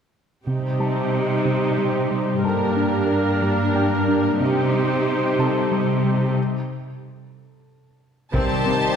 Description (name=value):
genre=cinematic, hybrid orchestral and electronic film score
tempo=61 BPM (dotted quarters)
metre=6/8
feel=straight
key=C dorian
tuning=A4 = 440 Hz
part: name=rich symphonic viola section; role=accompaniment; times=0.5-9.0 s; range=Bb3 to Bb4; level=-25 LUFS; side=right 2 dB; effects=none
part: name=warm analog pad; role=sustained chords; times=0.5-9.0 s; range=G3 to C5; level=-24 LUFS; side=left 1 dB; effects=chorus
part: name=thumb-piano-like synth pluck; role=arpeggios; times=0.5-8.9 s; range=C3 to D4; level=-26 LUFS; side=left 2 dB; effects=chorus, ping-pong delay
part: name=rich symphonic cello section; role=bass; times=0.5-8.7 s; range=G2 to C3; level=-24 LUFS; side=right 2 dB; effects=none
part: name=felt-muted upright piano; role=texture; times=0.8-9.0 s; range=A4 to A5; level=-34 LUFS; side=left 2 dB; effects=ping-pong delay
part: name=warm symphonic violin section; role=melody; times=8.3-9.0 s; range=A5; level=-24 LUFS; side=left 2 dB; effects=none
part: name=rich studio violin section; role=second line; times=8.3-9.0 s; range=G4 to C5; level=-27 LUFS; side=left 1 dB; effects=none
part: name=dark French horn section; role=sustained chords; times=8.3-9.0 s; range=Eb3 to G3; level=-27 LUFS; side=left 3 dB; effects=none
part: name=taiko ensemble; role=drums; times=8.3-9.0 s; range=none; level=-27 LUFS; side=equal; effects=none
room=wet scoring stage reverb, RT60 1.7 s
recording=heard from further back in the room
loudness=-18 LUFS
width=side -7 dB against mid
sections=0.5-8.3 A section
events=break 6.4-8.3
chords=0.5 Cm; 2.4 Gm; 4.4 Cm; 6.4 N.C.; 8.3 Cm